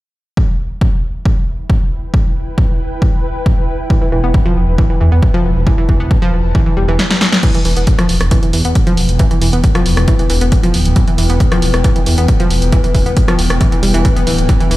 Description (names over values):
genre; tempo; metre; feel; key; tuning
driving peak-time techno; 136 BPM; 4/4; straight; E minor; A4 = 440 Hz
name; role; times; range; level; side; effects
electronic kick drum; drums; 0.4-14.6 s; none; -13 LUFS; equal; none
ethereal airy pad; texture; 2.0-14.8 s; E4 to A5; -28 LUFS; equal; ensemble chorus, built-in reverb, sidechain pumping
analog pluck; riff; 3.9-14.8 s; E3 to B3; -18 LUFS; right 1 dB; chorus, sidechain pumping, ping-pong delay
dark detuned saw bass; bass; 4.1-14.8 s; D1 to E2; -14 LUFS; equal; sidechain pumping
punchy analog drum machine; drums; 7.0-14.8 s; crash cymbal, hi-hat, rim click, snare drum; -19 LUFS; equal; none
metallic inharmonic drone; drone; 8.2-14.8 s; E3 to B3; -21 LUFS; left 3 dB; chorus, built-in reverb, sidechain pumping
room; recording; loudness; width
little or no reverb; played on a big sound system in a bare room, large studio reverb; -11 LUFS; side -17 dB against mid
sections
0.4-7.4 A section; 7.4-14.8 B section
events
fade-in on ambient pad 0.4-7.4; drum fill 7.0-7.4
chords
0.4 Em